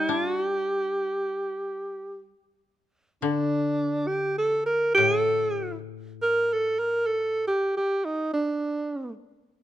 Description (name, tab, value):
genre	japanese traditional, Japanese chamber music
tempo	63-73 BPM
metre	4/4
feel	rubato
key	G hirajoshi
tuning	A4 = 440 Hz
part	clear alto saxophone	melody	0.0-9.1 s	D4 to Bb4	-24 LUFS	right 1 dB	none
part	koto	accompaniment	0.0-7.5 s	A2 to D4	-32 LUFS	left 9 dB	none
room	light reverb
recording	close, detailed microphones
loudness	-24 LUFS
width	side -13 dB against mid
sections	0.0-3.2 A section; 3.2-9.6 B section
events	none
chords	none